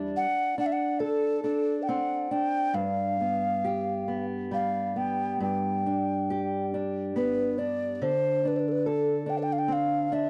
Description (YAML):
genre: celtic folk, Celtic slow air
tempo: 69 BPM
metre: 3/4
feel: rubato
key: unclear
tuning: A4 = 440 Hz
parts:
  - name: fingerpicked steel-string acoustic guitar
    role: accompaniment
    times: 0.0-10.3 s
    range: E2 to A4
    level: -32 LUFS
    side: equal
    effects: none
  - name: breathy alto ocarina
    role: melody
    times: 0.2-10.3 s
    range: A4 to G5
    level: -30 LUFS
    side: equal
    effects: none
room: light reverb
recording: dry, close 1970s-style studio recording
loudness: -28 LUFS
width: mono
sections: 0.0-10.3 A section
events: none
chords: 0.2 D5; 2.8 G7; 5.4 G; 8.0 D5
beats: | 0.17 1.01 1.88 | 2.75 3.63 4.52 | 5.42 6.30 7.17 | 8.02 8.86 9.70